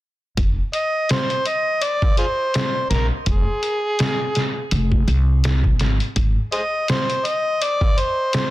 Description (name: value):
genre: trip hop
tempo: 83 BPM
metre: 4/4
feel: swing 56% on 16ths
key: F dorian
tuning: A4 = 442 Hz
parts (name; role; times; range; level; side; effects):
- upright bass; bass; 0.4-6.3 s; F1 to C2; -19 LUFS; equal; none
- trip hop sampler-style drum kit; drums; 0.4-8.5 s; hi-hat, kick drum, snare drum; -21 LUFS; equal; none
- overdriven harmonica; melody; 0.7-8.5 s; F4 to Eb5; -21 LUFS; equal; tape echo
room: little or no reverb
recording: dense, heavily limited modern master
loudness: -18 LUFS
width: side -16 dB against mid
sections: 0.4-8.5 A section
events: none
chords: 0.4 Fm; 6.2 Ab